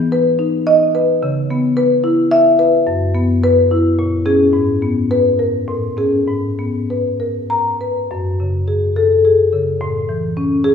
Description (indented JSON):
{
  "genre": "classical, contemporary piece for solo marimba",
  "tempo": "96-111 BPM",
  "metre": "3/4",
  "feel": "rubato",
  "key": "G# minor",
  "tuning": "A4 = 442 Hz",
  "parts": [
    { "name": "marimba with medium mallets", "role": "solo", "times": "0.0-10.7 s", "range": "F#2 to A#5", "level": "-13 LUFS", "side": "left 1 dB", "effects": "none" }
  ],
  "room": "wet recital hall reverb, RT60 1.5 s",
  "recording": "heard from further back in the room, studio ambience",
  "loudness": "-13 LUFS",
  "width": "side -7 dB against mid",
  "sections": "0.0-8.1 A section; 8.1-10.7 B section",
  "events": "none",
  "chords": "0.0 B/E; 1.2 C#m7; 2.9 F#7sus4; 4.0 A#m7; 4.5 G#madd9; 5.7 Amaj7; 6.3 G#madd9; 8.1 F#madd9; 9.8 A"
}